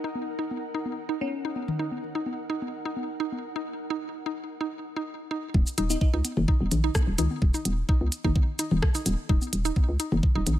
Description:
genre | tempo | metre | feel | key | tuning
minimal techno | 128 BPM | 4/4 | straight | Eb minor | A4 = 441 Hz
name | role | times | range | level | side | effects
mallet-like synth pluck | riff | 0.0-10.4 s | Eb4 | -33 LUFS | right 1 dB | chorus, sidechain pumping, digital delay
ethereal airy pad | texture | 0.0-3.7 s | Eb4 to Gb5 | -37 LUFS | right 1 dB | ensemble chorus, built-in reverb, sidechain pumping
electronic congas and toms | percussion | 0.2-10.6 s | none | -32 LUFS | left 3 dB | ping-pong delay
bell-like FM electric piano | melody | 1.2-1.9, 5.9-6.1 s | Db4 to Eb4 | -35 LUFS | left 4 dB | chorus, phaser, ping-pong delay
hollow knocking FM bass | bass | 5.5-10.6 s | Eb1 to Db2 | -26 LUFS | equal | sidechain pumping
electronic kick drum | drums | 5.5-10.3 s | none | -23 LUFS | equal | none
minimal click drum kit | drums | 5.7-10.6 s | hi-hat, rim click, shaker | -32 LUFS | equal | overdrive
room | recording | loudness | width
digital ambience | none | -25 LUFS | side -13 dB against mid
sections
0.0-5.5 A section; 5.5-10.6 B section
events
drop 5.5-10.6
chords
0.0 Ebm; 5.5 N.C.

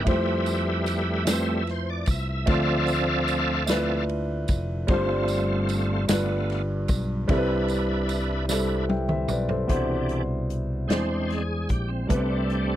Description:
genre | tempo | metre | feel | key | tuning
slow gospel | 50 BPM (dotted quarters) | 6/8 | straight | C major | A4 = 441 Hz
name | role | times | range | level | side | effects
dark grand piano | accompaniment | 0.0-12.8 s | G2 to G5 | -27 LUFS | equal | none
bright tonewheel organ | sustained chords | 0.0-12.8 s | E3 to F5 | -28 LUFS | right 1 dB | fast rotary speaker, overdrive, chorus vibrato
fingered electric bass | bass | 0.0-12.8 s | F1 to F2 | -28 LUFS | equal | none
swinging big-band drum kit | drums | 0.1-12.7 s | hi-hat, kick drum, ride cymbal, snare drum, toms | -26 LUFS | equal | none
tambourine | percussion | 0.5-9.7 s | none | -36 LUFS | right 6 dB | none
room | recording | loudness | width
light reverb | dry, close 1970s-style studio recording | -22 LUFS | side -12 dB against mid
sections
0.0-9.7 A section; 9.7-12.8 B section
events
tonewheel organ solo 0.0-9.7, 9.7-12.8; drum fill 8.5-9.7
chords
0.1 Fmaj7; 2.5 Dm7; 4.9 G7sus4; 6.1 G7; 7.3 Cmaj7; 9.7 Cmaj9; 10.9 Eaug7; 12.1 Am11/C

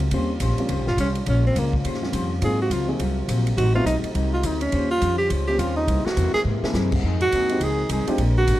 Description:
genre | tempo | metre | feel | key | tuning
jazz, big band swing | 208 BPM | 4/4 | swing 61% on 8ths | Eb mixolydian | A4 = 444 Hz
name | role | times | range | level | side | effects
vintage hollow-body jazz guitar | accompaniment | 0.0-8.6 s | Ab2 to C5 | -31 LUFS | left 6 dB | none
warm trombone section | sustained chords | 0.0-8.6 s | C3 to C5 | -33 LUFS | left 1 dB | none
upright bass | bass | 0.0-8.6 s | G1 to Ab2 | -23 LUFS | equal | none
swinging big-band drum kit | drums | 0.0-8.6 s | crash cymbal, hi-hat, kick drum, ride cymbal, snare drum | -32 LUFS | right 1 dB | none
dark grand piano | accompaniment | 0.1-8.2 s | Gb3 to Ab4 | -28 LUFS | equal | none
warm tenor saxophone | melody | 0.9-8.6 s | Bb3 to Ab4 | -24 LUFS | right 1 dB | none
room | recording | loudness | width
light reverb | dark, warm production | -20 LUFS | side -14 dB against mid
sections
0.0-8.6 A section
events
tenor saxophone solo 0.0-8.6; drum fill 6.5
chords
0.1 Eb13; 1.3 Bbm7; 1.8 Eb13; 2.4 Ab13; 3.6 Adim7; 4.7 Eb13; 5.9 C7alt; 7.0 Fm7

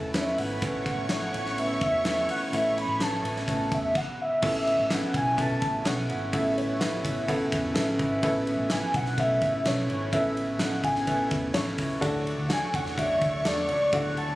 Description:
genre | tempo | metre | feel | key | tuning
piano-driven pop | 126 BPM | 4/4 | straight | A major | A4 = 439 Hz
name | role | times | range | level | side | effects
rich studio violin section | second line | 0.0-3.9, 12.0-14.4 s | A4 to C#6 | -36 LUFS | equal | none
dark upright piano | accompaniment | 0.0-14.4 s | A2 to F#5 | -30 LUFS | equal | none
direct-recorded clean electric guitar | riff | 0.0-14.4 s | A2 to F#4 | -35 LUFS | right 2 dB | none
vintage muted fingered electric bass | bass | 0.0-14.4 s | G#1 to E2 | -35 LUFS | equal | none
huge arena drum kit | drums | 0.1-14.3 s | crash cymbal, hi-hat, kick drum, ride cymbal, snare drum | -31 LUFS | equal | none
warm velvety synth lead | melody | 0.2-14.4 s | C#5 to B5 | -28 LUFS | equal | chorus, tape echo
lush unison pad | sustained chords | 4.4-14.4 s | A2 to G#5 | -40 LUFS | equal | none
room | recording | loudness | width
light reverb | recorded on a phone in the room, studio ambience, compression | -24 LUFS | side -17 dB against mid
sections
0.0-4.4 A section; 4.4-14.4 B section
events
none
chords
0.0 Aadd9; 12.0 D

